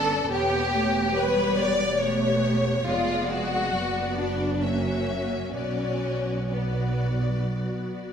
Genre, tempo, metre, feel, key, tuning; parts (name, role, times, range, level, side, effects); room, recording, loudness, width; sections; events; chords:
classical, slow romantic movement for string orchestra; 62-71 BPM; 3/4; rubato; B minor; A4 = 440 Hz
warm symphonic violin section; melody; 0.0-8.1 s; C#5 to E5; -33 LUFS; left 6 dB
warm symphonic violin section; second line; 0.0-7.5 s; B3 to D5; -26 LUFS; left 2 dB
warm symphonic viola section; accompaniment; 0.0-8.1 s; A#3 to A4; -32 LUFS; right 1 dB
dark symphonic cello section; bass; 0.0-7.9 s; F#3 to C#4; -32 LUFS; right 2 dB
warm symphonic double bass section; bass; 0.0-8.1 s; E1 to B1; -29 LUFS; right 2 dB
moderate scoring stage reverb, RT60 1.6 s; -23 LUFS; side -8 dB against mid
0.0-8.1 A section
0.3 C#m7b5/E; 2.8 Fdim7; 3.7 Bm/F#; 4.6 F#7; 5.5 Bm